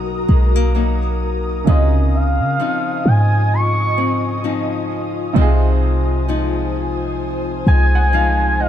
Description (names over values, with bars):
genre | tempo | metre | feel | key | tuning
contemporary R&B | 65 BPM | 4/4 | swing 58% on 16ths | unclear | A4 = 440 Hz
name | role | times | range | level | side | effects
clear baby grand piano | accompaniment | 0.0-8.7 s | B2 to Ab5 | -25 LUFS | right 5 dB | none
ethereal airy pad | sustained chords | 0.0-8.7 s | F4 to Eb6 | -25 LUFS | left 1 dB | ensemble chorus, built-in reverb
nylon-string guitar | arpeggios | 0.0-8.7 s | B2 to D#4 | -24 LUFS | left 7 dB | ping-pong delay
clean 808-style bass | bass | 0.0-8.7 s | B1 to Db3 | -16 LUFS | equal | none
gliding portamento lead | melody | 1.7-8.7 s | Eb5 to Db6 | -20 LUFS | equal | chorus, plate reverb, ping-pong delay
room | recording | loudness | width
light reverb | dark, warm production | -14 LUFS | side -10 dB against mid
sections
0.0-8.7 A section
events
grand piano fill 7.2-8.7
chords
0.0 Bmaj7; 1.7 Dbmaj9; 5.4 Fm7/C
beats
0.75 | 1.67 2.59 3.52 4.44 | 5.36 6.29 7.21 8.13